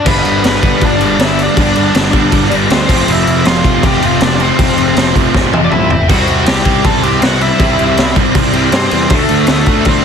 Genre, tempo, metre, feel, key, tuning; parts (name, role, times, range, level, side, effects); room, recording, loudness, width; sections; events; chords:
punk rock; 159 BPM; 4/4; straight; G major; A4 = 440 Hz
smooth overdriven lead guitar; melody; 0.0-10.0 s; A3 to A5; -16 LUFS; left 2 dB
cranked stack guitar; riff; 0.0-10.0 s; F2 to E4; -20 LUFS; right 1 dB
crunchy overdriven guitar; riff; 0.0-10.0 s; F2 to D4; -17 LUFS; left 13 dB
biting overdriven guitar; riff; 0.1-10.0 s; F2 to D4; -17 LUFS; right 14 dB
fuzz picked electric bass; bass; 0.1-10.0 s; F1 to G2; -18 LUFS; equal; overdrive
raw garage drum kit; drums; 0.1-10.0 s; crash cymbal, kick drum, snare drum, toms; -13 LUFS; equal
little or no reverb; dense, heavily limited modern master; -9 LUFS; side -7 dB against mid
0.1-10.0 A section
drum fill 5.3-6.1
0.1 G; 2.9 F; 6.1 C; 9.1 D